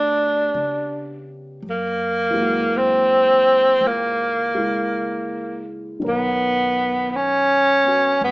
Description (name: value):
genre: jazz ballad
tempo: 55 BPM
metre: 4/4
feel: swing 67% on 8ths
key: unclear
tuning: A4 = 440 Hz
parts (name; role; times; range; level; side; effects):
- breathy tenor saxophone; melody; 0.0-8.3 s; Bb3 to D4; -17 LUFS; equal; none
- dark upright piano; accompaniment; 0.0-8.3 s; B2 to Db5; -29 LUFS; equal; none
- upright bass; bass; 0.0-8.3 s; F#1 to Db3; -35 LUFS; equal; none
room: moderate large studio reverb, RT60 1.1 s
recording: band playing live in one room, small speaker sound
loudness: -17 LUFS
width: side -22 dB against mid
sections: 0.0-8.3 A section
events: none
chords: 0.0 Gmaj7; 1.6 Gb9; 6.0 Bmaj9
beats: 0.54 | 1.63 2.72 3.81 4.92 | 6.02 7.12 8.22